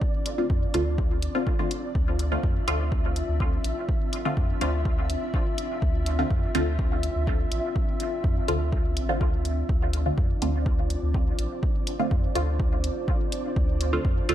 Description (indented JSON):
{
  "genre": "dub techno",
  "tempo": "124 BPM",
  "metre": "4/4",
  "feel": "straight",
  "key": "D minor",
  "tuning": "A4 = 440 Hz",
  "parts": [
    { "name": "dark analog pad", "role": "sustained chords", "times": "0.0-14.3 s", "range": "C4 to E5", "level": "-34 LUFS", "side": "equal", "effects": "chorus, sidechain pumping" },
    { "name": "electronic kick drum", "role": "drums", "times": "0.0-14.1 s", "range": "none", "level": "-26 LUFS", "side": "equal", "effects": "studio reverb" },
    { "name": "flickering grainy texture", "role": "texture", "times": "0.0-14.3 s", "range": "D4 to E5", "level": "-38 LUFS", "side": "equal", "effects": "built-in reverb, sidechain pumping" },
    { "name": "electronic hi-hat", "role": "drums", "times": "0.3-14.3 s", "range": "none", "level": "-35 LUFS", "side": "left 1 dB", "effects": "studio reverb" },
    { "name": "filtered dub chord stab", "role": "stabs", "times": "0.4-14.3 s", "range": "D3 to F4", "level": "-30 LUFS", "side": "equal", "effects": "phaser, sidechain pumping, dub echo" },
    { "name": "soft dub sub bass", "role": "bass", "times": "0.5-14.3 s", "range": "A1 to F2", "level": "-28 LUFS", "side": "equal", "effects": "sidechain pumping" }
  ],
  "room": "little or no reverb",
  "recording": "dark, warm production",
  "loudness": "-23 LUFS",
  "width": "side -12 dB against mid",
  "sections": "0.0-14.3 A section",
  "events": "none",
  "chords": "0.0 Dm7"
}